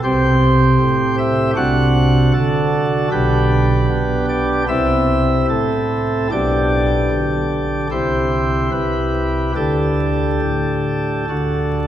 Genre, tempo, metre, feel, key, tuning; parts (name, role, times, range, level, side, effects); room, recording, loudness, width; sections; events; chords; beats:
classical, chorale-style piece for pipe organ; 76 BPM; 4/4; uneven beats, rubato; G major; A4 = 440 Hz
pipe organ, sparkling flutes; solo; 0.0-11.9 s; B1 to F#5; -15 LUFS; equal
wet cathedral reverb, RT60 4.2 s; vinyl crackle; -15 LUFS; side -11 dB against mid
0.0-11.9 A section
0.0 Am7/C; 1.6 D7/C; 3.1 G/B; 4.7 Am/C; 6.3 G/B; 7.9 Cmaj7; 9.6 Dsus4; 11.3 D
| 0.03 0.80 1.56 2.34 | 3.12 3.89 4.68 5.48 | 6.31 7.11 7.91 8.72 | 9.55 10.42 11.28